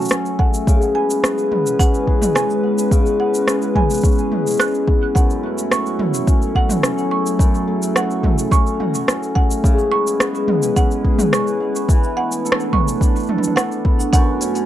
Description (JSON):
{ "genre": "folktronica", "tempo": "107 BPM", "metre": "4/4", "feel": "straight", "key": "F# minor", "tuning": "A4 = 439 Hz", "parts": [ { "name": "warbly tape-like pad", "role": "sustained chords", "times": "0.0-14.7 s", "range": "F#3 to C#5", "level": "-23 LUFS", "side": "right 1 dB", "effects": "chorus, built-in reverb, vintage 12-bit sampler grit" }, { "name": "cimbalom", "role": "arpeggios", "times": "0.0-14.7 s", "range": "F#2 to A4", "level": "-21 LUFS", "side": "left 2 dB", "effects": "tape echo" }, { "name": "organic electronic drum kit", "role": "drums", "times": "0.0-14.7 s", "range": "hi-hat, rim click, shaker, toms", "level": "-21 LUFS", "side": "right 1 dB", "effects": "overdrive" }, { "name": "marimba with medium hard mallets", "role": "second line", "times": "0.4-14.4 s", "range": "F#5 to F#6", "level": "-26 LUFS", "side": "right 5 dB", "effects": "tape echo" }, { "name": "electronic kick drum", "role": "drums", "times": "0.4-14.2 s", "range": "none", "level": "-16 LUFS", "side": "equal", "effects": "overdrive" } ], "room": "little or no reverb", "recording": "dry, close 1970s-style studio recording", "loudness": "-15 LUFS", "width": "side -12 dB against mid", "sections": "0.0-14.1 A section", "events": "filter sweep on hammered dulcimer 0.0-14.1", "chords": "0.0 F#m; 0.7 C#m7; 5.2 F#m7; 9.6 C#m7; 11.9 E7sus4; 14.1 F#m7" }